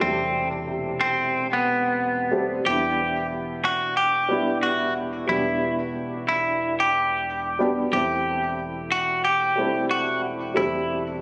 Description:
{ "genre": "trip hop", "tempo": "91 BPM", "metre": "4/4", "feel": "swing 58% on 16ths", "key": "E minor", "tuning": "A4 = 440 Hz", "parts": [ { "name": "semi-hollow electric guitar", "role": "melody", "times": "0.0-11.0 s", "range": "B3 to G4", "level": "-22 LUFS", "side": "equal", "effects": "vintage 12-bit sampler grit, dub echo" }, { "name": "dark upright piano", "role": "accompaniment", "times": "0.0-11.2 s", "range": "C3 to G4", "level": "-26 LUFS", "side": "equal", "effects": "tremolo, low-pass filter, tape echo" }, { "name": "upright bass", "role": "bass", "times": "0.0-11.2 s", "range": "E1", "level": "-37 LUFS", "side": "equal", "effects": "none" } ], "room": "light reverb, small room ambience", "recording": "recorded on a phone in the room, studio reverb, nothing above 10.3 kHz", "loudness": "-21 LUFS", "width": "side -25 dB against mid", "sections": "0.0-11.2 A section", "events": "none", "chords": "0.0 Am7/E; 2.6 Em7; 7.9 Am7/E" }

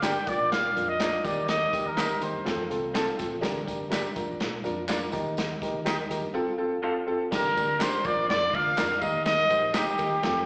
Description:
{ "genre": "uptempo 1960s-style soul", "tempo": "124 BPM", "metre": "4/4", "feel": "straight", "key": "unclear", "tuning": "A4 = 444 Hz", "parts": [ { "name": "breathy trumpet", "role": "melody", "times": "0.0-2.7, 7.3-10.5 s", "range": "G4 to G5", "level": "-28 LUFS", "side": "equal", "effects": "slapback echo, tape echo" }, { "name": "warm upright piano", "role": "accompaniment", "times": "0.0-10.4 s", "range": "A3 to C5", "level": "-34 LUFS", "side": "equal", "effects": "slapback echo" }, { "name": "electric guitar through a small old amp", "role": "stabs", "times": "0.0-9.8 s", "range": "C4 to F5", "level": "-35 LUFS", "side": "equal", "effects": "slapback echo" }, { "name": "vintage muted fingered electric bass", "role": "bass", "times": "0.0-10.4 s", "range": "G1 to Bb2", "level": "-42 LUFS", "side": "equal", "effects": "none" }, { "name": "crunchy breakbeat drum kit", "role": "drums", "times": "0.0-10.3 s", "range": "crash cymbal, hi-hat, kick drum, ride cymbal, snare drum", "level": "-35 LUFS", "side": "equal", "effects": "none" }, { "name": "handclaps and tambourine", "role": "percussion", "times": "0.0-10.4 s", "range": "none", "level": "-43 LUFS", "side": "equal", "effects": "none" }, { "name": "jazz flute", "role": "second line", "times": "7.3-10.5 s", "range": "G4 to F5", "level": "-40 LUFS", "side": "equal", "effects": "none" } ], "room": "light reverb", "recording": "live gig heard through the venue's PA, recital hall reverb, small speaker sound", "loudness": "-27 LUFS", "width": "mono", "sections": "0.0-7.3 A section; 7.3-10.5 B section", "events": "none", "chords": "0.3 Bb; 1.2 Eb; 2.5 F; 3.4 Gm; 4.2 Bb; 5.1 Eb; 6.3 F; 7.3 Gm; 8.0 Bb; 9.0 Eb" }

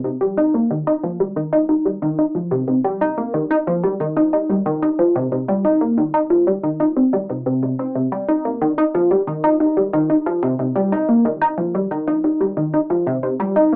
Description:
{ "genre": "ambient", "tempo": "91 BPM", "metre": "4/4", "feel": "straight", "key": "C minor", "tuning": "A4 = 440 Hz", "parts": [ { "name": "tight sequenced synth", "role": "solo", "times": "0.0-13.8 s", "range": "C3 to Eb4", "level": "-16 LUFS", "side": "equal", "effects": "chorus, cassette tape, tape echo" } ], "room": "wet booth ambience, RT60 0.3 s", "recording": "home recording on cassette, small speaker sound", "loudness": "-16 LUFS", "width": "side -33 dB against mid", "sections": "0.0-13.8 A section", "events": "none", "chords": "none" }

